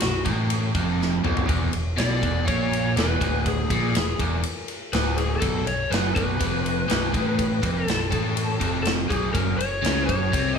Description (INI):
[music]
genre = blues rock power trio and southern rock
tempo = 122 BPM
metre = 4/4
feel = straight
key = unclear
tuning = A4 = 440 Hz
[part]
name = overdriven slide guitar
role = melody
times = 0.0-10.6 s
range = F#4 to D5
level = -28 LUFS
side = left 4 dB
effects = none
[part]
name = biting overdriven guitar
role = riff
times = 0.0-10.6 s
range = B1 to C#3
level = -25 LUFS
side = right 1 dB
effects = spring reverb
[part]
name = growling fingered electric bass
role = bass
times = 0.0-10.6 s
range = B0 to C#2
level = -27 LUFS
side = equal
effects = overdrive
[part]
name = big rock drum kit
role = drums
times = 0.0-10.5 s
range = kick drum, ride cymbal, snare drum, toms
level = -26 LUFS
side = equal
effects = none
[sound]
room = light reverb, small room ambience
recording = none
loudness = -21 LUFS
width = side -6 dB against mid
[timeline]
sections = 0.0-10.6 A section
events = drum fill 1.0-1.5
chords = 0.0 B7(no3); 1.5 E7; 5.4 B5; 9.4 F#5